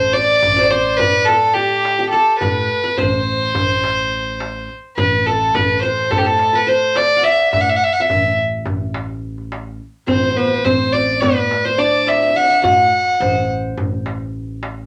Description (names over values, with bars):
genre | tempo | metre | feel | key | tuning
Turkish makam ensemble | 211 BPM (eighths) | 9/8 | straight | A makam huseyni | A4 = 440 Hz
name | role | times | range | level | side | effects
rich violin | melody | 0.0-13.5 s | G4 to F#5-28c | -18 LUFS | equal | none
qanun | second line | 0.0-14.3 s | G4 to F#5-30c | -23 LUFS | equal | none
upright bass | bass | 0.0-14.9 s | A1 to A2 | -29 LUFS | equal | none
darbuka | percussion | 0.4-14.8 s | none | -27 LUFS | equal | none
archtop guitar, miked and amplified | second line | 10.1-13.4 s | B3-30c to F#4-30c | -24 LUFS | equal | none
room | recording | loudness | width
wet studio reverb, RT60 0.5 s | none | -16 LUFS | mono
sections
0.0-14.9 A section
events
none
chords
none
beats
0.14 0.42 0.71 0.99 1.28 1.56 1.84 2.13 | 2.41 2.70 2.98 3.27 3.55 3.84 4.12 4.41 4.69 | 4.97 5.26 5.54 5.83 6.11 6.39 6.68 6.96 7.25 | 7.53 7.82 8.10 8.38 8.67 8.95 9.23 9.52 9.80 | 10.09 10.37 10.65 10.94 11.22 11.51 11.79 12.07 12.36 | 12.64 12.92 13.21 13.49 13.77 14.05 14.34 14.62